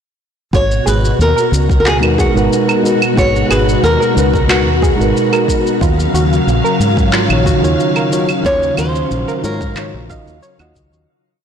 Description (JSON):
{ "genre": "sunset chillout", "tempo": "91 BPM", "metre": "4/4", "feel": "straight", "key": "G# dorian", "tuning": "A4 = 438 Hz", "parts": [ { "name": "flamenco guitar", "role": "melody", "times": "0.5-10.7 s", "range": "F#4 to C#5", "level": "-18 LUFS", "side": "left 1 dB", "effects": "digital delay, shimmer reverb" }, { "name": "soft string machine", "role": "sustained chords", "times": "0.5-11.1 s", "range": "B2 to E#5", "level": "-18 LUFS", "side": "left 1 dB", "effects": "ensemble chorus, shimmer reverb" }, { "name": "soft round pluck", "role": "arpeggios", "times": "0.5-10.7 s", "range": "E#4 to F#5", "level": "-22 LUFS", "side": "right 4 dB", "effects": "chorus, digital delay, shimmer reverb" }, { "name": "fingered electric bass", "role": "bass", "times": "0.5-11.0 s", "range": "G#1 to G#2", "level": "-16 LUFS", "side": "equal", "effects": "transformer saturation" }, { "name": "electronic kick drum", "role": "drums", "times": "0.5-10.9 s", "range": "none", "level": "-17 LUFS", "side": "equal", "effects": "none" }, { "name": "electronic shaker, handclaps and claves", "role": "drums", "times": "0.5-11.1 s", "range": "none", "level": "-21 LUFS", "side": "right 2 dB", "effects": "none" }, { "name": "mellow tine electric piano", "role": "accompaniment", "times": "2.0-11.1 s", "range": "D#3 to D#5", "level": "-18 LUFS", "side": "moving between left 4 dB and right 3 dB", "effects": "auto-pan, digital delay, shimmer reverb" } ], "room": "moderate lush hall reverb, RT60 2.4 s", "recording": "blown-out, overdriven recording, overdrive", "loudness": "-11 LUFS", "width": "side -8 dB against mid", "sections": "0.5-11.1 groove", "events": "fade-out 7.6-11.1", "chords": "0.5 G#m9; 5.8 D#m9" }